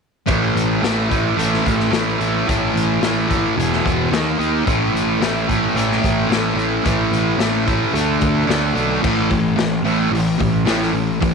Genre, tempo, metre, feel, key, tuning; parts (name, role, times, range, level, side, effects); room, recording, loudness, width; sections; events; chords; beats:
garage rock duo or trio; 110 BPM; 4/4; straight; A4 = 442 Hz
thick fuzz guitar; riff; 0.3-11.3 s; E2 to D#4; -17 LUFS; right 1 dB; distortion
fuzz picked electric bass; bass; 0.3-11.3 s; E1 to D#2; -23 LUFS; right 1 dB; overdrive, tube saturation
raw garage drum kit; drums; 0.3-11.3 s; crash cymbal, hi-hat, kick drum, snare drum; -23 LUFS; left 4 dB
small room ambience; 1960s-style stereo; -16 LUFS; side -5 dB against mid
0.3-9.0 A section; 9.0-11.3 B section
0.3 A5; 3.6 E5; 4.1 D#5; 4.7 A5; 7.9 D5; 9.0 A5
| 0.28 0.83 1.38 1.92 | 2.47 3.02 3.57 4.11 | 4.66 5.21 5.75 6.30 | 6.84 7.39 7.94 8.48 | 9.03 9.57 10.12 10.66 | 11.21